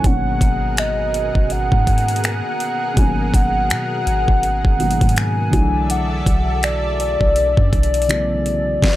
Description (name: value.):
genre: contemporary R&B.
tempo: 82 BPM.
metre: 4/4.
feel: swing 58% on 16ths.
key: G# minor.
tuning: A4 = 441 Hz.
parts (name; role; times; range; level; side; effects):
hollow clarinet-like synth lead; melody; 0.0-9.0 s; D5 to G#5; -21 LUFS; left 1 dB; chorus, phaser.
felt-muted upright piano; accompaniment; 0.0-8.8 s; B2 to D#4; -24 LUFS; equal; none.
lush unison pad; sustained chords; 0.0-8.8 s; B2 to F#5; -28 LUFS; right 1 dB; chorus.
soft 808-style bass; bass; 0.0-8.8 s; G#1 to B2; -22 LUFS; equal; none.
smooth R&B drum kit; drums; 0.0-9.0 s; finger snaps, hi-hat, kick drum, snare drum; -18 LUFS; equal; none.
room: little or no reverb.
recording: dry, gritty hardware recording.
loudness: -15 LUFS.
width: side -15 dB against mid.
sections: 0.0-9.0 A section.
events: none.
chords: 0.0 G#m11; 5.5 Bm11.